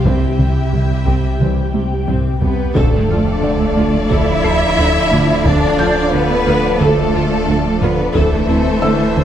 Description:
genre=cinematic, hybrid orchestral and electronic film score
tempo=89 BPM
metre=4/4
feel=straight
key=D dorian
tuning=A4 = 440 Hz
part: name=warm symphonic violin section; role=melody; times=0.0-9.2 s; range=E5 to F5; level=-30 LUFS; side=left 4 dB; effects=none
part: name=warm symphonic violin section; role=second line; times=0.0-9.2 s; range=E4 to E5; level=-22 LUFS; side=left 4 dB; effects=none
part: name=warm symphonic viola section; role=accompaniment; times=0.0-9.2 s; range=C3 to D5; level=-23 LUFS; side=right 1 dB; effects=none
part: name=airy breathy pad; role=sustained chords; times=0.0-9.2 s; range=C3 to G5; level=-24 LUFS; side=equal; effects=chorus, phaser
part: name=clear trombone section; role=sustained chords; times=0.0-9.2 s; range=D3 to G3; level=-25 LUFS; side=right 2 dB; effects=none
part: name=smooth synth bass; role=riff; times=0.0-9.2 s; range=C2 to D3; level=-22 LUFS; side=right 1 dB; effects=none
part: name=sub bass with octave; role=bass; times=0.0-9.2 s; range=D1 to C2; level=-23 LUFS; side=equal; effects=none
part: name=warm symphonic cello section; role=bass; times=0.0-9.2 s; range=C3 to E4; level=-20 LUFS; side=right 2 dB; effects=none
part: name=warm French horn section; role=sustained chords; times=0.1-9.2 s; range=C4 to C5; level=-26 LUFS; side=left 1 dB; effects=none
part: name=harp-like synth pluck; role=arpeggios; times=0.1-9.2 s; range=C3 to E4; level=-23 LUFS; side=left 1 dB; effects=chorus
part: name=warm studio double bass section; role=bass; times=0.1-9.2 s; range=C2 to D2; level=-23 LUFS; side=right 2 dB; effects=none
part: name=taiko ensemble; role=drums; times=0.1-8.8 s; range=none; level=-21 LUFS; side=equal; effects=none
part: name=sub drop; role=sound effects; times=2.8-5.5 s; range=none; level=-24 LUFS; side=left 1 dB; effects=none
part: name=felt-muted upright piano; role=texture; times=3.4-9.2 s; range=A4 to C7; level=-27 LUFS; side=left 2 dB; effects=none
room=wet scoring stage reverb, RT60 1.7 s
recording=none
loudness=-12 LUFS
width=side -10 dB against mid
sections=0.0-2.8 A section; 2.8-9.2 B section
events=drum fill 1.7-2.8; impact 2.8-5.5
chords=0.0 C; 2.8 Dm; 8.1 Am/D

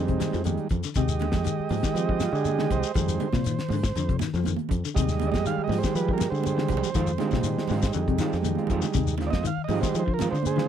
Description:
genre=afrobeat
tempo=120 BPM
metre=4/4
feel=straight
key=F dorian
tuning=A4 = 440 Hz
part: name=combo organ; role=accompaniment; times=0.0-10.7 s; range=G3 to F5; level=-28 LUFS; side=right 8 dB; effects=none
part: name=semi-hollow electric guitar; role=arpeggios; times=0.0-10.7 s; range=C3 to F3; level=-30 LUFS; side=left 8 dB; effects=lush chorus
part: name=fingered electric bass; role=bass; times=0.0-10.7 s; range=C2 to F3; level=-28 LUFS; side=left 1 dB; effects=none
part: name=damped 70s drum kit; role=drums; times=0.1-10.7 s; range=hi-hat, kick drum, snare drum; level=-28 LUFS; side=left 1 dB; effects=none
part: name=congas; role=percussion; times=0.2-10.7 s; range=none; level=-34 LUFS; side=right 15 dB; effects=none
part: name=shekere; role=percussion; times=0.2-10.6 s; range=none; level=-34 LUFS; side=left 6 dB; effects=none
part: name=mellow electric guitar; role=stabs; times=6.9-10.7 s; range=Eb3 to F4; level=-31 LUFS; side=right 6 dB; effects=none
room=light reverb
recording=dry, close 1970s-style studio recording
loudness=-23 LUFS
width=side -9 dB against mid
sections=0.0-10.7 A section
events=transistor combo organ solo 0.0-10.7; drum fill 6.4-6.9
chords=0.0 Fm7

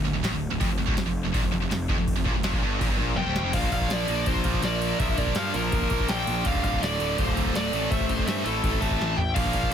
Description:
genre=heavy metal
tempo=164 BPM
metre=4/4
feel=straight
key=unclear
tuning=A4 = 440 Hz
part: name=heavy high-gain guitar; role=riff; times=0.0-9.7 s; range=D2 to Bb3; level=-31 LUFS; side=right 16 dB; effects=distortion
part: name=raw garage guitar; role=riff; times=0.0-9.7 s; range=D2 to Bb4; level=-33 LUFS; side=equal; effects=overdrive
part: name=scooped high-gain guitar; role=riff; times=0.0-9.7 s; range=D2 to Bb3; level=-32 LUFS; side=left 14 dB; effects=distortion
part: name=fuzz picked electric bass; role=bass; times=0.0-9.7 s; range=D1 to G2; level=-30 LUFS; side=equal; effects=overdrive
part: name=booming analog drum machine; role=drums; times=0.2-9.7 s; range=crash cymbal, kick drum, snare drum, toms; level=-28 LUFS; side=equal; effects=none
part: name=high-gain lead guitar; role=melody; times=3.2-9.7 s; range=A4 to A5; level=-29 LUFS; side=left 2 dB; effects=distortion, digital delay
part: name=bluesy overdriven lead guitar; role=second line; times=3.2-9.7 s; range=E4 to E5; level=-38 LUFS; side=right 3 dB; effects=distortion
room=little or no reverb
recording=dense, heavily limited modern master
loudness=-23 LUFS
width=side -8 dB against mid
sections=0.0-3.5 A section; 3.5-9.7 B section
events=drum fill 3.2-3.5, 9.0-9.4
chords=0.0 D5; 0.6 F5; 3.5 Bb; 6.5 Dm; 7.7 Am

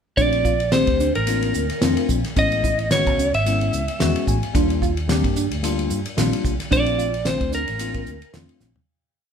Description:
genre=electric jazz fusion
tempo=110 BPM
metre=4/4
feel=swing 56% on 16ths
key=Bb major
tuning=A4 = 438 Hz
part: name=lightly driven lead guitar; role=melody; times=0.2-8.3 s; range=Bb4 to E5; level=-22 LUFS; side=right 1 dB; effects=none
part: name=tine electric piano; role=accompaniment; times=0.2-8.7 s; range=G3 to G#5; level=-25 LUFS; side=left 6 dB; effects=none
part: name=mellow electric guitar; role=stabs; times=0.2-8.5 s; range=B3 to F4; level=-27 LUFS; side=right 3 dB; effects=none
part: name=fingered electric bass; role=bass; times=0.2-8.7 s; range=G#1 to G2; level=-25 LUFS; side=equal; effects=none
part: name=damped 70s drum kit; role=drums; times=0.2-8.9 s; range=hi-hat, kick drum, ride cymbal, snare drum, toms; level=-24 LUFS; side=right 1 dB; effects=none
room=moderate large studio reverb, RT60 1.0 s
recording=band playing live in one room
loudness=-18 LUFS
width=side -7 dB against mid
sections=0.2-8.9 A section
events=tine electric piano fill 3.7-4.5; fade-out 6.7-8.9; drum fill 8.6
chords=0.2 Bbmaj9; 2.4 Amaj9; 4.5 Ebmaj9; 6.7 Bbmaj9

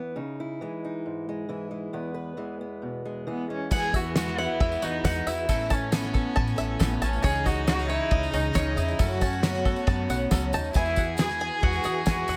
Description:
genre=indie folk with a building arrangement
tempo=137 BPM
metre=4/4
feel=straight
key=E major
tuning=A4 = 440 Hz
part: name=fingerpicked acoustic archtop guitar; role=accompaniment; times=0.0-5.5 s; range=E2 to B4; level=-36 LUFS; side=equal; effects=none
part: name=warm cello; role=melody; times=3.3-12.4 s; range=B3 to G#4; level=-32 LUFS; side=equal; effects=analog delay
part: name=warm fiddle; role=second line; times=3.7-12.4 s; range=B3 to G#4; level=-36 LUFS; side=equal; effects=none
part: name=picked twelve-string acoustic guitar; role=accompaniment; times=3.7-12.4 s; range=F#2 to A4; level=-37 LUFS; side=equal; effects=none
part: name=mellow tonewheel organ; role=sustained chords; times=3.7-12.4 s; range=C#3 to B4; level=-41 LUFS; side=equal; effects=none
part: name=bluegrass banjo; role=arpeggios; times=3.7-12.4 s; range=C#4 to A5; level=-36 LUFS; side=equal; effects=none
part: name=upright bass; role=bass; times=3.7-12.4 s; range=A1 to F#2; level=-33 LUFS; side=equal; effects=none
part: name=cloth-damped thuddy drum kit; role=drums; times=3.7-12.2 s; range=crash cymbal, kick drum, ride cymbal, snare drum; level=-30 LUFS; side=equal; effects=none
part: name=tambourine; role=percussion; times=3.7-12.4 s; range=none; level=-44 LUFS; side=equal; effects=none
room=light reverb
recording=none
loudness=-27 LUFS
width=mono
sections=0.0-3.7 A section; 3.7-12.4 B section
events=none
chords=0.2 C#madd9; 1.9 E; 3.7 Eadd9; 5.5 Asus2; 7.2 C#madd9; 9.0 F#m; 10.7 Eadd9

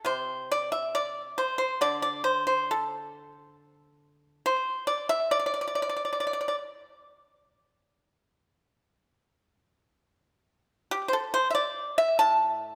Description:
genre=chinese traditional, Chinese solo plucked strings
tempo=69 BPM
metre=2/4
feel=rubato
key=unclear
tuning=A4 = 439 Hz
part: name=pipa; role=solo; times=0.0-6.5, 10.9-12.8 s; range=A2 to A5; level=-28 LUFS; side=equal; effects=slapback echo
room=moderate scoring stage reverb, RT60 1.8 s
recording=none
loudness=-28 LUFS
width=mono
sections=0.1-12.8 A section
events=none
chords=none

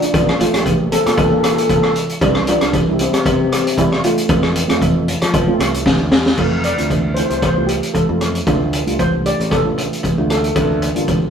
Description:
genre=calypso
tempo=115 BPM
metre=4/4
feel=swing 54% on 16ths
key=F major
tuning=A4 = 440 Hz
part: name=steel pan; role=melody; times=0.0-10.8 s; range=G3 to D5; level=-19 LUFS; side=left 1 dB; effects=none
part: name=street-band drum kit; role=drums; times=0.0-11.2 s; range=crash cymbal, hi-hat, kick drum, rim click, snare drum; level=-17 LUFS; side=equal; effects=none
part: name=steel pan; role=accompaniment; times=0.1-11.2 s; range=G3 to G4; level=-22 LUFS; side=right 3 dB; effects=none
part: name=modern bright fingered electric bass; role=bass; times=0.1-11.3 s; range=G1 to F3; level=-21 LUFS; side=left 1 dB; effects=none
part: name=cowbell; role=percussion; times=0.1-11.2 s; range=none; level=-26 LUFS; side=right 5 dB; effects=none
room=light reverb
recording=rough rehearsal-room recording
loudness=-14 LUFS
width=side -7 dB against mid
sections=0.0-6.4 A section; 6.4-11.3 B section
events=drum fill 5.9-6.4; steel pan solo 6.4-11.3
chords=0.1 Bbmaj7; 2.2 C; 4.3 F; 8.5 Dm; 10.6 Bb

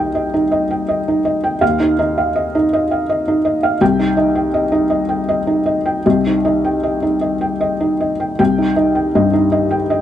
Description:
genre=neoclassical minimalist piano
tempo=75-83 BPM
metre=3/4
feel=rubato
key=C minor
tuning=A4 = 440 Hz
part: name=felt-muted upright piano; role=solo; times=0.0-10.0 s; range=C2 to G5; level=-14 LUFS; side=equal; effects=none
room=small room ambience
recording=dry, close 1970s-style studio recording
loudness=-14 LUFS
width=side -11 dB against mid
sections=0.0-8.4 A section; 8.4-10.0 A section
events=none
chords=0.0 Cm; 1.6 Ebsus2; 3.8 Cm

